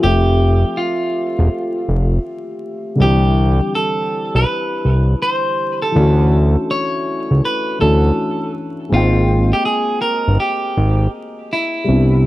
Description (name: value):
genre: lo-fi hip hop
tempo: 81 BPM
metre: 4/4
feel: swing 65% on 16ths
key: unclear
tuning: A4 = 441 Hz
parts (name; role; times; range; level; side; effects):
- clean electric guitar; melody; 0.0-12.3 s; E4 to C#5; -20 LUFS; right 1 dB; analog delay
- dark upright piano; accompaniment; 0.0-12.3 s; D3 to G5; -20 LUFS; left 1 dB; cassette tape
- fat analog bass; bass; 0.0-12.3 s; E1 to D2; -13 LUFS; equal; none
room: light reverb, small room ambience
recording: vinyl crackle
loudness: -14 LUFS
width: side -16 dB against mid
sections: 0.0-12.3 A section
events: none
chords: 0.0 Fmaj9; 3.0 Cmaj9; 6.0 Dmaj9; 8.9 Abmaj9